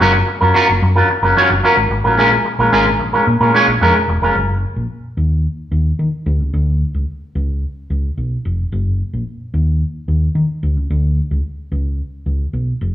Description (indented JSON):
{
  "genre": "disco",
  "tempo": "110 BPM",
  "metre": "4/4",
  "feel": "straight",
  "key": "F# major",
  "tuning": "A4 = 440 Hz",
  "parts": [
    { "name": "electric guitar with an envelope filter", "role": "accompaniment", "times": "0.0-4.4 s", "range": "F#3 to C#5", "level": "-12 LUFS", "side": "equal", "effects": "warbly pitch drift" },
    { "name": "hollow-body short-scale fingered electric bass", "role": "bass", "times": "0.0-12.9 s", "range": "E1 to D#3", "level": "-17 LUFS", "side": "equal", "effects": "none" }
  ],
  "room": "wet large studio reverb, RT60 1.3 s",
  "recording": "band playing live in one room",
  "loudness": "-14 LUFS",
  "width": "side -11 dB against mid",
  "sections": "0.0-4.4 A section; 4.4-12.9 B section",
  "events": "none",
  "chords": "0.0 F#maj7; 2.2 A#m7; 4.4 F#; 5.2 N.C.; 7.3 C#7; 8.7 F#; 9.5 N.C.; 11.7 C#7(no3)",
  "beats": "| 0.00 0.54 1.09 1.63 | 2.17 2.72 3.26 3.81 | 4.35 4.90 5.44 5.99 | 6.53 7.08 7.62 8.17 | 8.71 9.26 9.80 10.35 | 10.89 11.44 11.98 12.53"
}